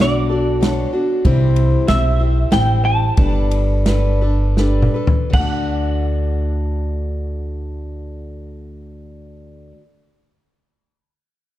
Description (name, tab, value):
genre	honky-tonk and classic country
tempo	77-96 BPM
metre	3/4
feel	straight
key	D major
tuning	A4 = 439 Hz
part	clean electric guitar	melody	0.0-9.7 s	D5 to A5	-22 LUFS	equal	ensemble chorus, tape echo
part	picked acoustic archtop guitar	accompaniment	0.0-9.8 s	C3 to C5	-22 LUFS	left 2 dB	none
part	upright bass	bass	0.0-9.7 s	G1 to D2	-18 LUFS	equal	none
part	natural country drum kit	drums	0.0-5.5 s	crash cymbal, kick drum, ride cymbal, snare drum, toms	-19 LUFS	equal	none
room	light reverb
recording	dark, warm production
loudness	-15 LUFS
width	side -14 dB against mid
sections	0.0-5.3 A section; 5.3-10.0 B section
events	slowing down 1.2-5.3; drum fill 4.6-5.3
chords	0.0 Bm7; 1.2 C; 3.2 Gadd9; 5.3 D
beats	0.00 0.62 | 1.25 1.88 2.52 | 3.17 3.86 4.58 | 5.33 6.12 6.90 | 7.68 8.46 9.24